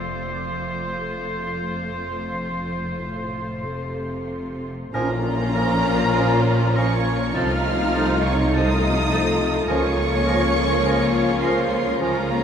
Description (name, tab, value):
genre	classical, slow romantic movement for symphony orchestra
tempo	44-53 BPM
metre	4/4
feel	rubato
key	Bb minor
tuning	A4 = 440 Hz
part	warm studio violin section	melody	0.0-12.4 s	Bb5 to F6	-29 LUFS	right 2 dB	none
part	warm oboe	second line	0.0-12.2 s	A4 to C5	-31 LUFS	equal	none
part	warm studio violin section	second line	0.0-12.4 s	Db4 to F4	-30 LUFS	right 1 dB	none
part	rich studio viola section	accompaniment	0.0-12.4 s	F3 to Bb3	-28 LUFS	left 4 dB	none
part	concert harp	arpeggios	0.0-12.4 s	Bb2 to C5	-31 LUFS	left 1 dB	none
part	warm studio cello section	bass	0.0-12.4 s	F2 to Db3	-28 LUFS	equal	none
part	warm studio double bass section	bass	0.0-12.4 s	F1 to Db2	-28 LUFS	right 1 dB	none
part	mellow large flute ensemble	second line	4.9-12.4 s	Bb4 to F5	-27 LUFS	equal	none
part	warm clarinet	second line	4.9-12.2 s	Db4 to Eb4	-33 LUFS	right 3 dB	none
part	tam-tam	percussion	4.9-9.6 s	none	-36 LUFS	right 3 dB	none
part	warm bassoon	accompaniment	5.0-12.2 s	F3	-31 LUFS	right 3 dB	none
part	warm French horn section	sustained chords	5.0-12.4 s	F3 to F4	-27 LUFS	left 1 dB	none
room	wet huge ambient reverb, RT60 7.7 s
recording	in a vast, echoing space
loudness	-19 LUFS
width	side -8 dB against mid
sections	0.0-4.9 A section; 4.9-12.4 A section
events	band accent 4.9-6.2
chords	0.0 F; 4.9 Bbm; 7.3 F7/C; 9.7 Bbm/Db